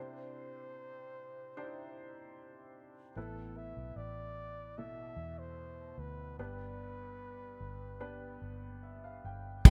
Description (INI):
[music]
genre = pop ballad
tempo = 74 BPM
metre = 4/4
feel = straight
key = unclear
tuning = A4 = 439 Hz
[part]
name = mellow flugelhorn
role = melody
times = 0.0-9.7 s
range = A4 to E5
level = -52 LUFS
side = equal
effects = delay
[part]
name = clear baby grand piano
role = accompaniment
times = 0.0-9.7 s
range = G2 to G5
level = -52 LUFS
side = equal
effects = analog chorus
[part]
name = vintage muted fingered electric bass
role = bass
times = 3.2-9.7 s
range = G1 to E2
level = -50 LUFS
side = equal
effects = none
[part]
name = chorused pulse-width pad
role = sustained chords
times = 9.7 s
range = C3 to G4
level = -32 LUFS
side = equal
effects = none
[part]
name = unplugged drum kit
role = drums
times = 9.7 s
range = crash cymbal, kick drum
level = -15 LUFS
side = equal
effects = none
[sound]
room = studio reverb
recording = bright 1980s-style digital production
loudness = -41 LUFS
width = mono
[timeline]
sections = 0.0-9.7 A section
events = grand piano fill 8.4-9.7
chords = 0.0 Cadd9; 3.2 Asus2; 6.4 G